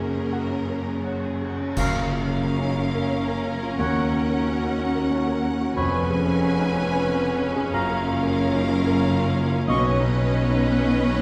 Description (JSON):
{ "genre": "cinematic, emotional film score for orchestra", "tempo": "91 BPM", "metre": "3/4", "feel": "rubato", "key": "F# major", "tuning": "A4 = 439 Hz", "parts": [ { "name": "warm studio violin section", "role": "melody", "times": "0.0-11.2 s", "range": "A#4 to G#5", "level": "-37 LUFS", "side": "equal", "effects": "none" }, { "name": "rich studio violin section", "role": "second line", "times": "0.0-11.2 s", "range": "A#3 to B4", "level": "-35 LUFS", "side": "equal", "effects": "none" }, { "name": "rich studio viola section", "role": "accompaniment", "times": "0.0-11.2 s", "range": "C#4", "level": "-33 LUFS", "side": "equal", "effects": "none" }, { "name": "warm concert grand piano", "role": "accompaniment", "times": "0.0-11.2 s", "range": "B1 to G#5", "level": "-30 LUFS", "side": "equal", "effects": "none" }, { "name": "warm French horn section", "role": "sustained chords", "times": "0.0-11.2 s", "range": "A#3 to G#4", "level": "-32 LUFS", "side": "equal", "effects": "none" }, { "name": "concert harp", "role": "arpeggios", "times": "0.0-11.2 s", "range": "E#2 to C#6", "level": "-34 LUFS", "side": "equal", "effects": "none" }, { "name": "rich studio cello section", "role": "bass", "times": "0.0-11.2 s", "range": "D#2 to B2", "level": "-31 LUFS", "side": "equal", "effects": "none" }, { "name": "warm studio double bass section", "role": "bass", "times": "0.0-11.2 s", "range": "E#1 to D#2", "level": "-31 LUFS", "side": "equal", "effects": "none" }, { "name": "silver concert flute", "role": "second line", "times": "1.8-10.0 s", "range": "E#5 to C#6", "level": "-33 LUFS", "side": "equal", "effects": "none" }, { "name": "warm cor anglais", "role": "second line", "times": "1.8-9.9 s", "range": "A#4 to E#5", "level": "-35 LUFS", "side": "equal", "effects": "none" }, { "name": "clash cymbals and concert bass drum", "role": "percussion", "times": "1.8-3.1 s", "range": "none", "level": "-35 LUFS", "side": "equal", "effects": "none" } ], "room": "wet recital hall reverb, RT60 1.5 s", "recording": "recorded in a church or concert hall", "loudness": "-23 LUFS", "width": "mono", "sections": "0.0-1.8 A section; 1.8-11.2 B section", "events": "band accent 1.8-2.4", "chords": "0.0 F#add9; 1.8 F#maj7; 3.8 D#m7; 5.8 C#7/E#; 7.7 F#maj7; 9.7 Badd9", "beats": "0.33 1.05 | 1.77 2.45 3.13 | 3.80 4.47 5.12 | 5.77 6.42 7.08 | 7.73 8.38 9.03 | 9.68 10.33 10.98" }